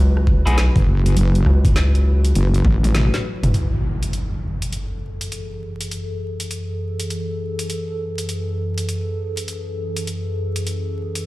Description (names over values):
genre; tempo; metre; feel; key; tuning
glitch hop; 101 BPM; 4/4; swing 64% on 16ths; F# minor; A4 = 441 Hz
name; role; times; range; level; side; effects
warbly tape-like pad; sustained chords; 0.0-11.3 s; F#2 to B4; -26 LUFS; equal; chorus, built-in reverb, phaser, sidechain pumping
rubbery square bass; bass; 0.0-3.5 s; F#1 to C#2; -15 LUFS; equal; none
drum and bass drum kit; drums; 0.2-11.2 s; hi-hat, rim click, snare drum, toms; -26 LUFS; equal; overdrive, small room ambience
electronic kick drum; drums; 0.3-2.8 s; none; -16 LUFS; equal; overdrive, small room ambience
electric guitar at the edge of break-up; stabs; 0.5-0.6 s; A3 to G#4; -26 LUFS; left 1 dB; sidechain pumping, ping-pong delay
wobble bass; bass; 0.8-3.1 s; F#1 to A1; -15 LUFS; equal; chorus, tube saturation
impact; sound effects; 3.5-5.9 s; none; -25 LUFS; equal; none
room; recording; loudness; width
little or no reverb; played on a big sound system in a bare room, large studio reverb, vinyl crackle; -18 LUFS; side -19 dB against mid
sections
0.0-3.5 A section; 3.5-11.3 B section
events
drum fill 2.6-3.5; break 2.9-3.5; impact 3.5-5.9; filter sweep on ambient pad 3.5-11.3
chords
0.0 F#m7; 3.5 F#m9